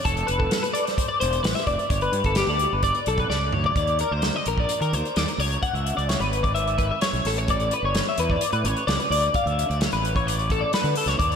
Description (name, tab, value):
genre	math rock and midwest emo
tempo	129 BPM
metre	4/4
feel	straight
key	unclear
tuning	A4 = 440 Hz
part	twelve-string electric guitar	arpeggios	0.0-11.4 s	G4 to F#5	-23 LUFS	left 2 dB	analog chorus, tape echo
part	fuzz fingered electric bass	bass	0.1-11.4 s	E1 to Eb3	-26 LUFS	right 1 dB	overdrive
part	loose indie drum kit	drums	0.1-11.4 s	hi-hat, kick drum, snare drum, toms	-27 LUFS	right 1 dB	none
room	wet lush hall reverb, RT60 2.1 s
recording	dreamy mix soaked in reverb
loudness	-21 LUFS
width	side -7 dB against mid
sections	0.0-3.8 A section; 3.8-11.4 B section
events	drum fill 3.3-3.8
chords	0.1 Fmaj7; 1.9 G; 3.8 Eb5; 5.4 C#m7; 7.3 Asus4; 9.1 D5